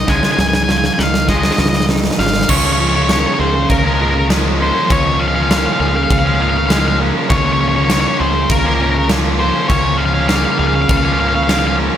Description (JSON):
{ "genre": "post-rock", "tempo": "100 BPM", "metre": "4/4", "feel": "straight", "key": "unclear", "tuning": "A4 = 438 Hz", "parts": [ { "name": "octave-fuzz lead guitar", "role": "melody", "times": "0.0-11.7 s", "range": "Bb4 to Ab5", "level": "-18 LUFS", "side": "left 1 dB", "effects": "distortion, tape echo" }, { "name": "twelve-string electric guitar", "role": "arpeggios", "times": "0.0-12.0 s", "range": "Db3 to Ab4", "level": "-23 LUFS", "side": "equal", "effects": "tape echo" }, { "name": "distorted electric guitar", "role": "riff", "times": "0.0-12.0 s", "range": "Db3 to Db4", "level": "-19 LUFS", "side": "right 1 dB", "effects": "overdrive" }, { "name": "modern bright picked electric bass", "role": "bass", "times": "0.0-11.9 s", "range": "Ab1 to Db2", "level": "-19 LUFS", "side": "equal", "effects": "none" }, { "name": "huge arena drum kit", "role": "drums", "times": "0.1-11.6 s", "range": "crash cymbal, kick drum, snare drum", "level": "-17 LUFS", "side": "equal", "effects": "none" } ], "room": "light reverb, studio reverb", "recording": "none", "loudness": "-12 LUFS", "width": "side -10 dB against mid", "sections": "0.0-2.5 A section; 2.5-12.0 B section", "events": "build-up 0.0-2.5; drum fill 0.0-2.5", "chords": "0.1 Dbadd9; 2.5 Db6", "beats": "| 0.09 0.69 1.29 1.89 | 2.50 3.10 3.70 4.30 | 4.90 5.50 6.10 6.70 | 7.30 7.90 8.50 9.10 | 9.70 10.30 10.90 11.49" }